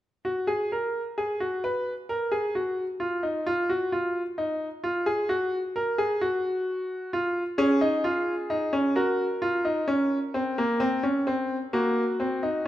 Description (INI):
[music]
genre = classical, baroque-style 4-part fugue for grand piano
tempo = 65 BPM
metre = 4/4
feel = straight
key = unclear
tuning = A4 = 442 Hz
[part]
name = bright baby grand piano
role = solo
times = 0.2-12.7 s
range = A#3 to B4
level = -24 LUFS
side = equal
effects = none
[sound]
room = wet recital hall reverb, RT60 1.6 s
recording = none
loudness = -24 LUFS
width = side -13 dB against mid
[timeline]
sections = 0.0-12.7 A section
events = none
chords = 0.0 N.C.; 7.1 C#; 9.0 F#; 10.8 A#madd9